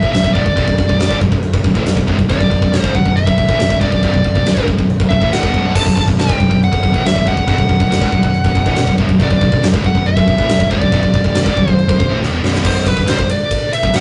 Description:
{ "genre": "heavy metal", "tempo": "139 BPM", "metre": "4/4", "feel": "straight", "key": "B minor", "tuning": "A4 = 442 Hz", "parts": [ { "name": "high-gain lead guitar", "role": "melody", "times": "0.0-14.0 s", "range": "B4 to A5", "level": "-21 LUFS", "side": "equal", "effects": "distortion" }, { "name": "heavy high-gain guitar", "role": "riff", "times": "0.0-14.0 s", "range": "B1 to E3", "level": "-22 LUFS", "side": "equal", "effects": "distortion" }, { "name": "high-gain distorted guitar", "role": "riff", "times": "0.0-14.0 s", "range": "B1 to E3", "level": "-25 LUFS", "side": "equal", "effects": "none" }, { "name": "scooped high-gain guitar", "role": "riff", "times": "0.0-14.0 s", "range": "B1 to E3", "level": "-22 LUFS", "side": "equal", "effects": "distortion" }, { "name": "picked electric bass", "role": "bass", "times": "0.0-14.0 s", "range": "B0 to A1", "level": "-24 LUFS", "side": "equal", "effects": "none" }, { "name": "big rock drum kit", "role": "drums", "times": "0.0-14.0 s", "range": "china cymbal, crash cymbal, kick drum, ride cymbal, snare drum", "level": "-18 LUFS", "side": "equal", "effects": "none" } ], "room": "moderate booth ambience, RT60 0.2 s", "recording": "rough rehearsal-room recording, tube saturation, nothing above 10.5 kHz", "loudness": "-14 LUFS", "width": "mono", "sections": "0.0-12.7 A section; 12.7-14.0 B section", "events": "drum fill 12.2-12.7", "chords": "0.0 Bm" }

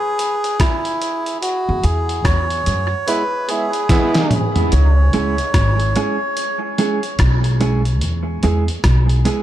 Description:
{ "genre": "dub reggae", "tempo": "73 BPM", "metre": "4/4", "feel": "swing 61% on 16ths", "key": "C# minor", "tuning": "A4 = 442 Hz", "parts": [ { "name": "melodica", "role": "melody", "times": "0.0-6.0 s", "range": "E4 to C#5", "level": "-21 LUFS", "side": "equal", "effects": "tape echo" }, { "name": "dusty soul sampler-style drum kit", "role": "drums", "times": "0.2-9.4 s", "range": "hi-hat, kick drum, rim click, snare drum, toms", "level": "-20 LUFS", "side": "equal", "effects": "none" }, { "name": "upright bass", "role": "bass", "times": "1.7-9.2 s", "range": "G#1 to F#2", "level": "-16 LUFS", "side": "equal", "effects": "none" }, { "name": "clear trombone section", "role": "second line", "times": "3.1-4.5 s", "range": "G#3 to E4", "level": "-22 LUFS", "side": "right 3 dB", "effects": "tape echo" }, { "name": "mellow electric guitar", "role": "accompaniment", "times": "5.1-9.4 s", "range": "G#3 to G#4", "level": "-21 LUFS", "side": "right 4 dB", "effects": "tape echo" } ], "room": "light reverb, digital ambience", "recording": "echo-heavy mix", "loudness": "-15 LUFS", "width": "side -12 dB against mid", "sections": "0.0-4.7 A section; 4.7-9.4 B section", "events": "break 0.0-4.7; band accent 1.4-4.7; drum fill 3.9-4.7", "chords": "0.0 C#m (rootless); 1.4 E; 4.7 C#m; 8.0 E" }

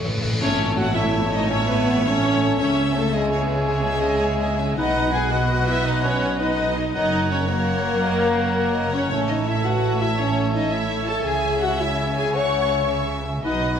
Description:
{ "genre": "cinematic, heroic adventure film score", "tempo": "110 BPM (dotted quarters)", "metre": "12/8", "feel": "straight", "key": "A lydian", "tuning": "A4 = 443 Hz", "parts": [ { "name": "dark clarinet", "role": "second line", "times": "0.0-13.8 s", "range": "B4 to C#5", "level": "-34 LUFS", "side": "left 1 dB", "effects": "none" }, { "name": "mellow hollow concert flute", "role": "second line", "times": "0.0-13.8 s", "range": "B4 to B5", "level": "-32 LUFS", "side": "left 2 dB", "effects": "none" }, { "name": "rich chamber violin section", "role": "second line", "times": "0.0-13.8 s", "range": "G#4 to F#5", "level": "-32 LUFS", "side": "left 2 dB", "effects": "none" }, { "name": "warm cor anglais", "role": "second line", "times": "0.0-13.8 s", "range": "C#5 to F#5", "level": "-30 LUFS", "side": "right 2 dB", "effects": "none" }, { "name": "concert harp", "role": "arpeggios", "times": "0.0-13.8 s", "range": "F#2 to E6", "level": "-32 LUFS", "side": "left 7 dB", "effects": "none" }, { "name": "timpani", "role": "percussion", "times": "0.0-0.9 s", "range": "A2", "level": "-28 LUFS", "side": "equal", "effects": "none" }, { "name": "rich studio double bass section", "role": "bass", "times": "0.1-13.8 s", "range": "F#1 to C#2", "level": "-28 LUFS", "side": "right 3 dB", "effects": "none" }, { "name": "rich symphonic violin section", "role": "melody", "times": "0.4-13.8 s", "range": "G#4 to C#6", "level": "-27 LUFS", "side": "left 2 dB", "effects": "none" }, { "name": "rich symphonic viola section", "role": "accompaniment", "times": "0.4-13.8 s", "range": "G#3 to C#5", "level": "-30 LUFS", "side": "right 3 dB", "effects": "none" }, { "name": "dark French horn section", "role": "sustained chords", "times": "0.4-13.8 s", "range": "G#3 to C#5", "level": "-25 LUFS", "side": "left 2 dB", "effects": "none" }, { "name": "warm symphonic cello section", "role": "bass", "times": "0.4-13.8 s", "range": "F#2 to C#3", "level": "-28 LUFS", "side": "right 3 dB", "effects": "none" }, { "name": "tam-tam", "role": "percussion", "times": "0.4-1.8 s", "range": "none", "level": "-32 LUFS", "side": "equal", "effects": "none" } ], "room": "wet scoring stage reverb, RT60 1.8 s", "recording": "none", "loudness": "-19 LUFS", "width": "side -8 dB against mid", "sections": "0.4-13.8 A section", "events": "timpani fill 0.0-0.4; band accent 0.4-0.8", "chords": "0.4 A; 2.6 C#m; 4.8 B; 6.9 F#; 9.1 A; 11.3 C#m" }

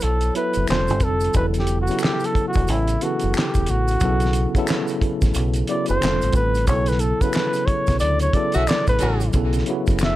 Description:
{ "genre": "R&B, neo-soul", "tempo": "90 BPM", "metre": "4/4", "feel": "swing 62% on 16ths", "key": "B minor", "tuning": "A4 = 439 Hz", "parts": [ { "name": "breathy flugelhorn", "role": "melody", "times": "0.0-10.2 s", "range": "E4 to E5", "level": "-23 LUFS", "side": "equal", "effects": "none" }, { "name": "tine electric piano", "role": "accompaniment", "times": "0.0-10.2 s", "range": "C#3 to E5", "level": "-24 LUFS", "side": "right 1 dB", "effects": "overdrive, fast stereo tremolo" }, { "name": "deep dub fingered electric bass", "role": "bass", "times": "0.0-10.2 s", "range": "E1 to D2", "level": "-22 LUFS", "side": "equal", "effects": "none" }, { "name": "cloth-damped thuddy drum kit", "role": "drums", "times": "0.0-10.2 s", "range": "handclaps, hi-hat, kick drum, snare drum", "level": "-23 LUFS", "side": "equal", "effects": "none" }, { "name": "maracas and finger snaps", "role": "percussion", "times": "0.0-10.2 s", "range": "none", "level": "-34 LUFS", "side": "equal", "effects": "none" }, { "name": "clear saxophone section", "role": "stabs", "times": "8.5-9.2 s", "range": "D3 to F#4", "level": "-29 LUFS", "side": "equal", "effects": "tape echo" } ], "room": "light reverb", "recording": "none", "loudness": "-18 LUFS", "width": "side -15 dB against mid", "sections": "0.0-9.3 A section", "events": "flugelhorn solo 0.0-9.3; band accent 6.7-9.3", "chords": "0.0 Bsus2; 0.7 Fadd9; 1.3 Esus4; 4.0 Bsus2; 6.0 Fadd9; 6.7 Bm9; 9.3 B7sus2" }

